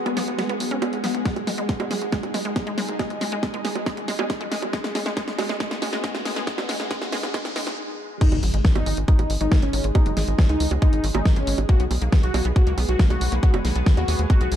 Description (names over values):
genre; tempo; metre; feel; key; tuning
psychedelic trance; 138 BPM; 4/4; straight; unclear; A4 = 440 Hz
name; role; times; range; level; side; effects
swarming drone; sustained chords; 0.0-14.6 s; G#3 to G#4; -33 LUFS; right 1 dB; built-in reverb, sidechain pumping
warbly tape-like pad; texture; 0.0-14.6 s; B3 to B5; -34 LUFS; left 1 dB; chorus, built-in reverb, phaser, sidechain pumping
wide unison pluck; riff; 0.1-14.5 s; F#3 to C#4; -32 LUFS; moving between left 5 dB and right 5 dB; auto-pan, sidechain pumping, dub echo
tight sequencer bass; bass; 0.1-14.6 s; F#1 to D#2; -26 LUFS; equal; high-pass filter
big-room dance drum kit; drums; 0.1-14.6 s; bongos, crash cymbal, hi-hat, snare drum; -28 LUFS; right 2 dB; none
electronic kick drum; drums; 1.3-14.4 s; none; -20 LUFS; equal; none
riser and impact; sound effects; 3.3-10.0 s; none; -34 LUFS; equal; none
wide unison lead; melody; 8.2-14.5 s; C#4 to F#4; -28 LUFS; left 1 dB; phaser, sidechain pumping, dub echo
room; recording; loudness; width
light reverb, digital ambience; dark, warm production, high-pass filter; -20 LUFS; side -10 dB against mid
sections
0.0-8.2 A section; 8.2-14.6 B section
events
build-up 0.0-8.2; drum fill 0.0-7.8; filter sweep on synth arpeggio sound 0.0-8.2; filter sweep 0.0-8.2; riser 3.3-7.8; stop 7.8-8.2; drop 8.2-14.6; impact 8.2-10.0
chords
0.0 B5; 1.3 G#5; 4.7 B5; 8.2 G#5; 11.7 B5